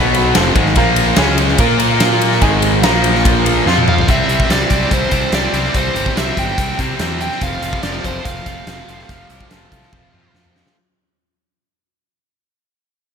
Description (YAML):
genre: classic rock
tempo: 144 BPM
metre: 4/4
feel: straight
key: unclear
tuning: A4 = 440 Hz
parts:
  - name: warm upright piano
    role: accompaniment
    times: 0.0-4.0 s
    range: Db4 to C6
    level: -23 LUFS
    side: right 7 dB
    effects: none
  - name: ensemble organ-string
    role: sustained chords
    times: 0.0-4.1 s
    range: F3 to F5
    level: -29 LUFS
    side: equal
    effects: none
  - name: cranked stack guitar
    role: riff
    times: 0.0-10.7 s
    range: F2 to Bb4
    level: -19 LUFS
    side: left 14 dB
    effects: overdrive
  - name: distorted electric guitar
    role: riff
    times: 0.0-10.8 s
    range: F2 to Bb4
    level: -20 LUFS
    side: right 14 dB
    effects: overdrive
  - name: fuzz fingered electric bass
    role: bass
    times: 0.0-10.6 s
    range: F1 to C3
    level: -20 LUFS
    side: equal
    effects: overdrive
  - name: big rock drum kit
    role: drums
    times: 0.1-10.8 s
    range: hi-hat, kick drum, ride cymbal, snare drum, toms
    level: -17 LUFS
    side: equal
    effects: none
  - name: biting lead guitar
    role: melody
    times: 3.9-10.3 s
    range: C5 to G5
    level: -23 LUFS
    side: right 2 dB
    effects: overdrive, slapback echo
  - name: octave-fuzz lead guitar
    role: second line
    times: 8.9-10.5 s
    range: F4 to F5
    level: -54 LUFS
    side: left 3 dB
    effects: distortion
room: light reverb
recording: none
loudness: -12 LUFS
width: side -7 dB against mid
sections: 0.0-4.1 A section; 4.1-10.8 B section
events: drum fill 3.7-4.1, 9.9-10.8; fade-out 4.1-10.8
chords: 0.3 F; 0.8 Bb5; 1.2 Db5; 1.6 Bb5; 2.4 Ab5; 2.8 Bb5; 3.7 F5; 4.1 C; 7.4 F